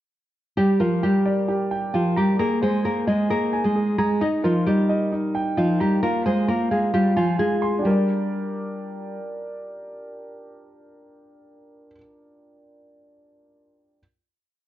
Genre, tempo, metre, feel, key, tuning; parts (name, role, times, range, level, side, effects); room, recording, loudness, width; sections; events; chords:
hip hop, trap; 132 BPM; 4/4; half-time; G phrygian; A4 = 439 Hz
nylon-string guitar; melody; 0.6-9.2 s; F3 to Eb5; -21 LUFS; equal; low-pass filter, ping-pong delay
dark concert grand piano; accompaniment; 0.6-14.0 s; D4 to C6; -26 LUFS; right 1 dB; low-pass filter
moderate scoring stage reverb, RT60 1.6 s, studio reverb; dark, warm production; -19 LUFS; side -13 dB against mid
0.6-7.8 breakdown; 7.8-11.5 final chord
0.6 Gm; 2.4 Abadd9; 4.2 Eb; 6.0 Fm; 7.8 Gm